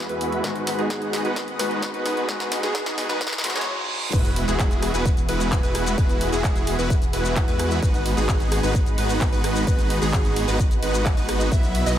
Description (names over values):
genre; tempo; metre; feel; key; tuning
EDM, festival progressive house; 130 BPM; 4/4; straight; unclear; A4 = 440 Hz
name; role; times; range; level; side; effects
warm grand piano; accompaniment; 0.0-4.2 s; G#2 to F#4; -32 LUFS; left 4 dB; sidechain pumping, digital delay
lush unison pad; sustained chords; 0.1-12.0 s; E3 to B5; -33 LUFS; right 1 dB; chorus, phaser, sidechain pumping
plucky unison lead; arpeggios; 0.0-12.0 s; G#4 to E5; -30 LUFS; equal; sidechain pumping, digital delay
supersaw chords; riff; 0.0-12.0 s; F#3 to E5; -26 LUFS; right 1 dB; sidechain pumping, low-pass filter, digital delay
wide detuned saw bass; bass; 0.0-12.0 s; E1 to E2; -26 LUFS; equal; chorus, sidechain pumping
riser, reverse cymbal and sub drop; sound effects; 1.4-6.0 s; none; -34 LUFS; right 2 dB; none
big-room dance drum kit; drums; 0.1-12.0 s; crash cymbal, handclaps, hi-hat, rim click, shaker, snare drum; -30 LUFS; equal; high-pass filter on hats, small room ambience, high-pass filter on snare, high-pass filter on cymbals, high-pass filter on perc
electronic kick drum; drums; 0.4-11.6 s; none; -22 LUFS; equal; high-pass filter on kick, small room ambience, high-pass filter on room
room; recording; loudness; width
light reverb; high-pass filter; -20 LUFS; side -11 dB against mid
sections
0.0-4.1 A section; 4.1-12.0 B section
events
build-up 0.0-4.1; drum fill 0.0-3.7; filter sweep on supersaw synth 0.0-4.1; filter sweep on digital synth lead 0.0-4.1; filter sweep 0.0-4.1; reverse cymbal 3.2-4.1; drop 4.1-12.0; impact 4.1-6.0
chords
0.4 G#m7; 4.1 Eadd9; 7.8 G#m7